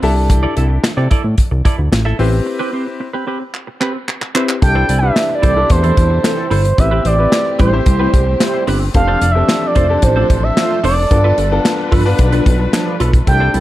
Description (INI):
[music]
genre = early-eighties boogie funk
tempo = 111 BPM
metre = 4/4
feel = straight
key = C major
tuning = A4 = 440 Hz
[part]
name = clear grand piano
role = accompaniment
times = 0.0-13.5 s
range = B3 to C5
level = -21 LUFS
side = left 4 dB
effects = none
[part]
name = semi-hollow electric guitar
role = riff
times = 0.0-13.6 s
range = C4 to E5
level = -23 LUFS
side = right 3 dB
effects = wide subtle chorus
[part]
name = fat analog bass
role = bass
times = 0.0-13.6 s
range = F1 to C3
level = -15 LUFS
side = equal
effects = none
[part]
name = modern studio drum kit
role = drums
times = 0.0-13.6 s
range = handclaps, hi-hat, kick drum, snare drum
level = -16 LUFS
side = equal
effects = none
[part]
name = expressive synth lead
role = melody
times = 4.6-13.6 s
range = C5 to G5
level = -17 LUFS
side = right 2 dB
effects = chorus
[part]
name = warm studio string section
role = sustained chords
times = 4.6-13.6 s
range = C3 to B4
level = -26 LUFS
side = left 2 dB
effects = none
[part]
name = mellow synth brass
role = second line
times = 5.4-13.0 s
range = E3 to C5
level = -22 LUFS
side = equal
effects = chorus
[sound]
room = light reverb, studio ambience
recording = dark, warm production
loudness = -12 LUFS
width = side -15 dB against mid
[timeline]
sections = 0.0-4.6 A section; 4.6-13.6 B section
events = break 2.5-4.6; drum fill 3.5-4.6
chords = 0.0 C69; 2.2 Am9; 4.6 C6; 6.8 Am9; 8.9 F6; 11.1 G9